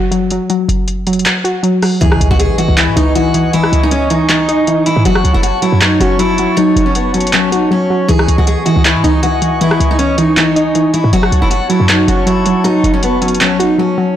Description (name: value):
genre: hip hop, trap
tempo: 158 BPM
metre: 4/4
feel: half-time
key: unclear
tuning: A4 = 440 Hz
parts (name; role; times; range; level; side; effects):
- warbly dusty pluck; accompaniment; 0.0-14.2 s; E3 to F#4; -15 LUFS; left 1 dB; chorus
- short 808-style bass; bass; 0.0-13.8 s; F#1 to G#2; -15 LUFS; equal; none
- booming analog drum machine; drums; 0.1-13.7 s; handclaps, hi-hat, rim click; -16 LUFS; equal; none
- picked steel-string acoustic guitar; melody; 2.0-14.1 s; B3 to G#4; -15 LUFS; right 1 dB; tape echo
- warm analog pad; sustained chords; 2.0-14.1 s; E3 to C#6; -20 LUFS; right 1 dB; chorus
- impact; sound effects; 2.0-3.5 s; none; -20 LUFS; right 1 dB; none
room: light reverb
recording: blown-out, overdriven recording, overdrive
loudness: -10 LUFS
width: side -10 dB against mid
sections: 0.0-2.0 A section; 2.0-14.2 B section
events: kick muted 1.3-2.0; impact 2.0-3.5; drums muted 7.7-8.1; break 13.8-14.2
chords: 0.0 F#5; 2.0 C#madd9; 5.1 F#m; 8.1 C#madd9; 11.1 F#m